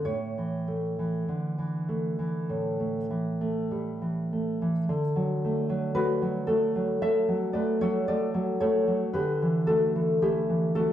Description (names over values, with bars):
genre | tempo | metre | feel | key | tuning
romantic piece for solo classical guitar | 48-58 BPM | 4/4 | rubato | D major | A4 = 444 Hz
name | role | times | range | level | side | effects
nylon-string guitar | solo | 0.0-10.9 s | A2 to E5 | -25 LUFS | equal | slapback echo
room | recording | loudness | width
wet recital hall reverb, RT60 1.6 s | dark, warm production | -25 LUFS | side -11 dB against mid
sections
0.0-4.9 A section; 4.9-10.9 B section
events
none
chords
0.1 A; 4.9 D; 9.2 A5/D